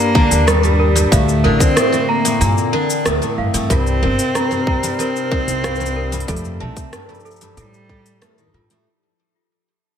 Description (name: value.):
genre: folktronica.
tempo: 93 BPM.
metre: 4/4.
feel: straight.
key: unclear.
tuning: A4 = 440 Hz.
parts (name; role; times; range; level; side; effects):
rich cello; melody; 0.0-8.5 s; G3 to C4; -21 LUFS; left 1 dB; ping-pong delay.
worn celesta; second line; 0.0-8.9 s; F4 to Bb5; -23 LUFS; right 2 dB; ping-pong delay.
warbly tape-like pad; sustained chords; 0.0-8.8 s; C3 to Bb4; -26 LUFS; left 2 dB; chorus, built-in reverb.
picked twelve-string acoustic guitar; arpeggios; 0.0-8.8 s; G2 to G3; -22 LUFS; left 1 dB; ping-pong delay.
organic electronic drum kit; drums; 0.0-8.8 s; cabasa, hi-hat, rim click; -21 LUFS; left 1 dB; overdrive.
electronic kick drum; drums; 0.2-8.0 s; none; -17 LUFS; equal; overdrive.
upright bass; bass; 0.3-8.7 s; G1 to A2; -18 LUFS; equal; none.
room: light reverb.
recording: none.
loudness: -14 LUFS.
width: side -8 dB against mid.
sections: 0.0-8.9 A section.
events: fade-out 2.0-8.9.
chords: 0.0 Ebmaj7; 1.1 Bbmaj7; 3.7 Cm7; 6.3 F9.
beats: 0.48 | 1.12 1.77 2.41 3.06 | 3.70 4.35 4.99 5.64 | 6.28 6.93 7.57 8.22.